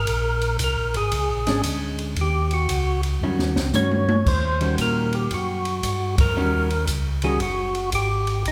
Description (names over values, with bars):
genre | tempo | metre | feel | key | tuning
soul jazz organ trio | 115 BPM | 4/4 | swing 66% on 8ths | unclear | A4 = 440 Hz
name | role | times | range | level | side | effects
percussive tonewheel organ | melody | 0.0-8.5 s | Eb4 to Db5 | -27 LUFS | equal | slow rotary speaker, overdrive
mellow tonewheel organ | bass | 0.0-8.5 s | F#1 to Bb2 | -27 LUFS | equal | slow rotary speaker
open jazz drum kit | drums | 0.1-8.5 s | crash cymbal, hi-hat, kick drum, ride cymbal, snare drum, toms | -29 LUFS | equal | none
archtop guitar, miked and amplified | accompaniment | 1.5-7.4 s | Eb3 to F#4 | -29 LUFS | equal | none
room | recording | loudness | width
moderate recital hall reverb, RT60 1.6 s | recorded in a church or concert hall | -22 LUFS | mono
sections
0.0-4.3 A section; 4.3-8.5 B section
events
tonewheel organ solo 0.0-4.3; drum fill 3.2-4.3; band accent 6.1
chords
0.1 Bb7#9; 2.2 Eb7#9